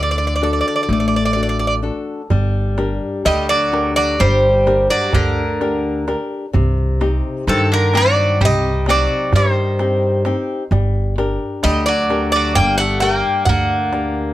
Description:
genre	greek folk, Greek bouzouki band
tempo	129 BPM (eighths)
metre	9/8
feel	straight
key	unclear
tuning	A4 = 440 Hz
part	Greek bouzouki	melody	0.0-14.3 s	A4 to G5	-17 LUFS	right 1 dB	none
part	flamenco guitar	accompaniment	0.0-14.3 s	C3 to G5	-22 LUFS	left 3 dB	none
part	upright bass	bass	0.0-14.3 s	G1 to G2	-20 LUFS	equal	none
part	darbuka	percussion	2.3-14.3 s	none	-21 LUFS	right 2 dB	none
part	Greek bouzouki	second line	3.3-14.3 s	C3 to Bb3	-24 LUFS	right 1 dB	none
room	light reverb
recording	close, detailed microphones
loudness	-14 LUFS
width	side -14 dB against mid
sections	0.0-2.3 A section; 2.3-14.3 B section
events	speeding up 0.0-14.3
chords	0.0 D; 2.3 Gm; 6.5 Cm; 10.7 Gm

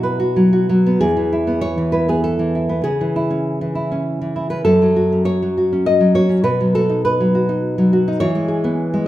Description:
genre	romantic piece for solo classical guitar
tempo	100 BPM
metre	3/4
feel	rubato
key	E major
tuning	A4 = 441 Hz
part	nylon-string guitar	solo	0.0-9.1 s	E2 to D#5	-15 LUFS	equal	none
room	moderate recital hall reverb, RT60 1.3 s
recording	minimal, uncompressed stereo recording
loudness	-15 LUFS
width	side -14 dB against mid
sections	0.0-1.0 A section; 1.0-9.1 B section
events	none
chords	0.0 B5; 1.0 E; 2.9 C#m; 4.7 F#m; 6.5 B; 8.2 E

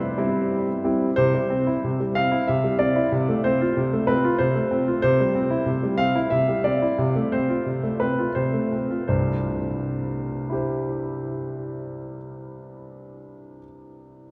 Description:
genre	classical-period piano sonatina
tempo	83-94 BPM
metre	3/4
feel	straight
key	C major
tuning	A4 = 440 Hz
part	clear concert grand piano	solo	0.0-14.3 s	C2 to F5	-24 LUFS	equal	none
room	wet cathedral reverb, RT60 6.3 s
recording	in a vast, echoing space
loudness	-23 LUFS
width	mono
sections	0.0-1.2 A section; 1.2-9.1 B section; 9.1-13.4 C section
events	slowing down 4.1-9.1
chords	0.0 C; 3.1 F/C; 5.0 C; 7.0 F/C; 9.1 C

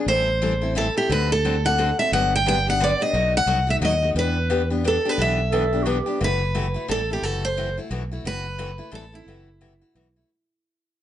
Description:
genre	acoustic string swing (jazz manouche)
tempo	176 BPM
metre	3/4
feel	swing 60% on 8ths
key	unclear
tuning	A4 = 440 Hz
part	picked steel-string acoustic guitar	accompaniment	0.0-10.3 s	B2 to A4	-27 LUFS	left 4 dB	none
part	picked steel-string acoustic guitar	melody	0.1-9.9 s	E4 to G5	-22 LUFS	equal	none
part	fingered electric bass	bass	0.1-10.2 s	F#1 to E2	-25 LUFS	equal	none
part	growling clarinet	second line	5.5-6.2 s	F#4 to A4	-25 LUFS	right 4 dB	none
room	moderate club reverb, RT60 0.9 s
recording	nothing above 10.7 kHz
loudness	-20 LUFS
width	side -11 dB against mid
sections	0.0-6.2 A section; 6.2-10.3 B section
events	fade-out 6.2-10.3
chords	0.1 Am7; 1.1 D7; 2.1 Gmaj7; 3.1 B7; 4.2 Em7; 6.2 F#m7b5; 6.9 Am7; 7.2 F#m7b5; 7.9 B7sus4; 8.3 F#m7b5; 8.9 Am7; 9.3 F#m7b5; 10.0 B7sus4

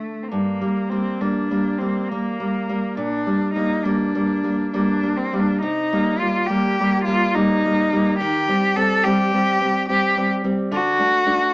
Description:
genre	romantic duo for cello and classical guitar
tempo	69 BPM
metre	3/4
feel	uneven beats, rubato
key	G minor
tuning	A4 = 440 Hz
part	rich cello	melody	0.0-11.5 s	A3 to A4	-20 LUFS	left 1 dB	none
part	nylon-string guitar	accompaniment	0.0-11.5 s	G2 to D4	-21 LUFS	equal	none
room	moderate stone room reverb, RT60 1.2 s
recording	band playing live in one room, small speaker sound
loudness	-17 LUFS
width	side -23 dB against mid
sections	0.3-11.5 A section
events	none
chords	0.3 Gm; 3.0 Gm/Bb; 5.6 Cm7 (rootless); 8.2 C5; 10.7 D

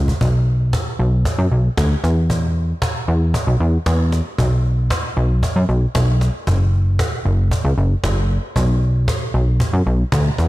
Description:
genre	dance-pop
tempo	115 BPM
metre	4/4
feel	straight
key	B minor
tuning	A4 = 441 Hz
part	plucky analog bass	bass	0.0-10.5 s	F#1 to F#2	-16 LUFS	equal	none
part	cajon	drums	0.1-10.5 s	none	-23 LUFS	equal	none
room	small room ambience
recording	blown-out, overdriven recording, overdrive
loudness	-15 LUFS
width	side -18 dB against mid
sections	0.2-10.5 A section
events	drum fill 0.0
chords	none

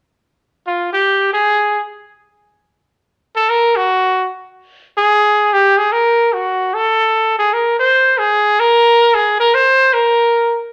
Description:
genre	jazz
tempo	free time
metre	none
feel	none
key	unclear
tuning	A4 = 442 Hz
part	bright trumpet	solo	0.7-10.6 s	F4 to C5	-14 LUFS	equal	none
room	moderate large studio reverb, RT60 1.2 s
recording	band playing live in one room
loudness	-14 LUFS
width	mono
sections	0.2-2.7 A section; 2.7-10.7 B section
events	none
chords	none

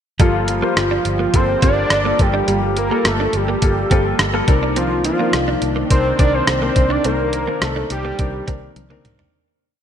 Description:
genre	1980s-style pop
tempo	105 BPM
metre	4/4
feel	straight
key	G minor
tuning	A4 = 440 Hz
part	fat analog lead	melody	0.2-8.4 s	F4 to D5	-20 LUFS	equal	ping-pong delay
part	clear baby grand piano	accompaniment	0.2-9.4 s	Eb3 to C5	-23 LUFS	left 4 dB	lush chorus
part	sweeping resonant pad	sustained chords	0.2-9.3 s	C3 to A4	-28 LUFS	right 1 dB	chorus
part	direct-recorded clean electric guitar	riff	0.2-9.3 s	G3 to D4	-26 LUFS	right 5 dB	ensemble chorus, ping-pong delay
part	vintage muted fingered electric bass	bass	0.2-9.3 s	G1 to C2	-23 LUFS	equal	none
part	gated 80s digital drum machine	drums	0.2-9.3 s	hi-hat, kick drum, rim click, toms	-18 LUFS	equal	gated reverb
room	moderate lush hall reverb, RT60 1.8 s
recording	bright 1980s-style digital production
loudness	-15 LUFS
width	side -9 dB against mid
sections	0.2-9.3 verse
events	fade-out 7.1-9.3; drum fill 8.8-9.3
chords	0.2 Gm9; 4.5 Cm9

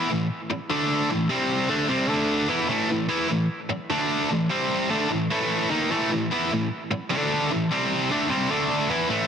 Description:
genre	rock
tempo	150 BPM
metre	4/4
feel	straight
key	unclear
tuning	A4 = 440 Hz
part	high-gain distorted guitar	solo	0.0-9.3 s	A2 to E4	-22 LUFS	equal	distortion, analog delay
room	light reverb, digital ambience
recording	heavily compressed radio sound, multiband compression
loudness	-22 LUFS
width	side -7 dB against mid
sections	0.0-9.1 A section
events	none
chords	0.0 A5; 0.7 D5; 1.1 A5; 1.3 C5; 1.7 Csus2; 2.1 D5; 2.5 A5; 3.9 D5; 4.3 A5; 4.5 C5; 4.9 A5; 7.1 D5; 7.5 A5; 7.7 C5; 8.1 Csus2; 8.5 D5; 8.9 E5

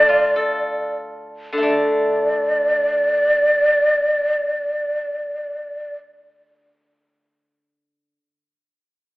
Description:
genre	chinese traditional, Chinese chamber ensemble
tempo	44 BPM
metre	2/4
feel	rubato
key	D yu mode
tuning	A4 = 440 Hz
part	breathy xiao	melody	0.0-6.0 s	D5	-17 LUFS	equal	none
part	steel-string zither	accompaniment	0.0-8.2 s	D3 to A4	-22 LUFS	left 1 dB	none
room	wet recital hall reverb, RT60 1.5 s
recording	recorded in a church or concert hall, telephone sound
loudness	-17 LUFS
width	side -21 dB against mid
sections	0.0-1.6 A section; 1.6-7.0 B section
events	slowing down 0.0-1.6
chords	none

